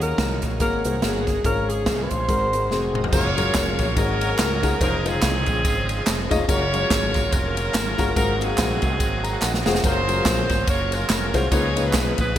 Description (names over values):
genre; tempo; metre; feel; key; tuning
uptempo gospel; 143 BPM; 4/4; swing 58% on 8ths; Db major; A4 = 440 Hz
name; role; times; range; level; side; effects
warm alto saxophone; melody; 0.0-2.9 s; Ab4 to C5; -25 LUFS; equal; digital delay
warm grand piano; accompaniment; 0.0-12.4 s; Ab2 to Bb5; -26 LUFS; left 4 dB; none
bright tonewheel organ; sustained chords; 0.0-12.4 s; Db3 to Ab5; -31 LUFS; right 3 dB; slow rotary speaker, overdrive, chorus vibrato
modern bright fingered electric bass; bass; 0.0-12.4 s; F1 to Eb2; -27 LUFS; equal; none
swinging big-band drum kit; drums; 0.0-12.4 s; crash cymbal, hi-hat, kick drum, ride cymbal, snare drum, toms; -24 LUFS; equal; gated reverb
edgy saxophone section; melody; 3.1-12.4 s; C4 to Db5; -25 LUFS; equal; digital delay
tambourine and handclaps; percussion; 3.1-12.4 s; none; -32 LUFS; right 2 dB; none
room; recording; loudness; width
light reverb, small room ambience; bright 1980s-style digital production; -19 LUFS; side -11 dB against mid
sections
0.0-3.1 A section; 3.1-12.4 B section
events
tonewheel organ fill 2.5-3.1, 9.0-9.8; drum fill 2.7-3.1, 9.4-9.8; grand piano fill 9.0-9.8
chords
0.0 Ebm9; 0.6 Ab9sus4; 1.4 Db/Ab; 2.3 Ab9; 3.1 Gbmaj9; 4.0 Ab9sus4; 4.8 Dbmaj9/F; 6.5 Gbmaj9; 8.2 Ab13; 9.8 Gbmaj9; 11.5 Db13